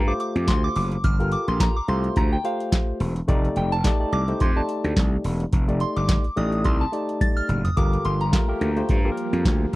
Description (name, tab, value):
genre	early-eighties boogie funk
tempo	107 BPM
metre	4/4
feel	swing 56% on 16ths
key	G minor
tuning	A4 = 441 Hz
part	soft synth bell	melody	0.0-9.6 s	F5 to A6	-28 LUFS	right 1 dB	chorus, slapback echo
part	gritty slap bass	bass	0.0-9.8 s	E1 to G2	-24 LUFS	equal	overdrive
part	barky tine electric piano	accompaniment	0.1-9.8 s	A3 to D5	-28 LUFS	left 2 dB	overdrive
part	booming analog drum machine	drums	0.2-9.8 s	handclaps, hi-hat, kick drum, snare drum, toms	-21 LUFS	equal	none
part	string machine, full ensemble	sustained chords	7.8-9.8 s	F3 to G4	-34 LUFS	right 5 dB	none
room	little or no reverb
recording	dry, close 1970s-style studio recording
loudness	-20 LUFS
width	side -18 dB against mid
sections	0.0-9.8 A section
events	synth bell solo 0.0-9.8; drum fill 7.2-7.8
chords	0.0 Gm9; 3.3 F13; 7.8 Gm9